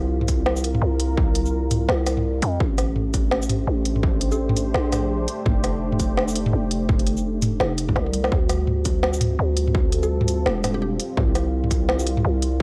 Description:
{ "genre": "half-time drum and bass", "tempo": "168 BPM", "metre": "4/4", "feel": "swing 59% on 16ths, half-time", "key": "D minor", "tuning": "A4 = 440 Hz", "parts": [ { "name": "dark analog pad", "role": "sustained chords", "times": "0.0-12.6 s", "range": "G3 to C5", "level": "-32 LUFS", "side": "equal", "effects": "chorus, sidechain pumping" }, { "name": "growling 808-style bass", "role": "bass", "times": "0.0-12.6 s", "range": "E1 to F2", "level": "-25 LUFS", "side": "equal", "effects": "none" }, { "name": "organic electronic drum kit", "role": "drums", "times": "0.2-12.5 s", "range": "hi-hat, shaker, snare drum, toms", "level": "-27 LUFS", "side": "equal", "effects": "studio reverb" }, { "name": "electronic kick drum", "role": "drums", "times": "0.3-11.8 s", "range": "none", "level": "-25 LUFS", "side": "equal", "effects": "distortion, overdrive, studio reverb" }, { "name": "mallet-like synth pluck", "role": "melody", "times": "4.3-4.5, 10.0-10.9 s", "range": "G4 to A4", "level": "-36 LUFS", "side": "equal", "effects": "none" } ], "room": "digital ambience", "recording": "dry, gritty hardware recording, cassette tape", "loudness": "-22 LUFS", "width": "mono", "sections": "0.0-12.6 A section", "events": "drum fill 8.0-8.3", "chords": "0.0 Csus4; 2.6 Am; 5.5 F; 8.3 Dm; 11.2 Csus4" }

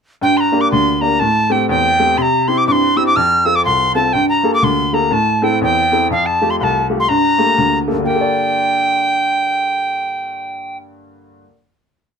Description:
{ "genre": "celtic folk, Celtic polka", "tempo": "122 BPM", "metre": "2/4", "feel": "swing 61% on 8ths", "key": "G dorian", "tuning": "A4 = 435 Hz", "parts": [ { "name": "bright wooden whistle", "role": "melody", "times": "0.2-10.8 s", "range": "F5 to F6", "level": "-15 LUFS", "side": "equal", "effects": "none" }, { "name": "bright upright piano", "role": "accompaniment", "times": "0.2-11.6 s", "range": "C2 to D5", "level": "-17 LUFS", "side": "equal", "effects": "none" } ], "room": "moderate small room reverb, RT60 0.5 s", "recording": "minimal, uncompressed stereo recording", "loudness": "-13 LUFS", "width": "side -6 dB against mid", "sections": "0.2-8.1 A section; 8.1-10.0 final chord", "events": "none", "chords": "0.2 Gm; 1.2 Am7; 2.2 C; 3.2 F; 4.1 Gmadd9; 5.1 Am; 6.1 Fadd9; 7.1 Gmadd9" }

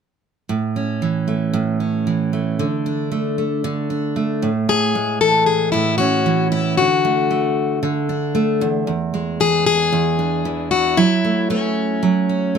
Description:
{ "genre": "pop", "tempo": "114 BPM", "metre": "4/4", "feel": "swing 60% on 16ths", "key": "A major", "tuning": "A4 = 441 Hz", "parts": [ { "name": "picked steel-string acoustic guitar", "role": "accompaniment", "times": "0.5-12.6 s", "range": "E2 to E4", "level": "-19 LUFS", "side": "right 3 dB", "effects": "none" }, { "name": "picked plugged-in steel-string acoustic guitar", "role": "melody", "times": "4.7-12.6 s", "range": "C#4 to A4", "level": "-17 LUFS", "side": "left 6 dB", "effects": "plate reverb" } ], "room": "moderate studio reverb, RT60 0.7 s", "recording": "none", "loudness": "-16 LUFS", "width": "side -7 dB against mid", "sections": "0.5-4.7 A section; 4.7-12.6 B section", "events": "none", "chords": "0.5 A; 2.6 D5; 4.4 N.C.; 4.7 Amaj7; 6.8 D; 8.6 E7; 11.0 F#m7" }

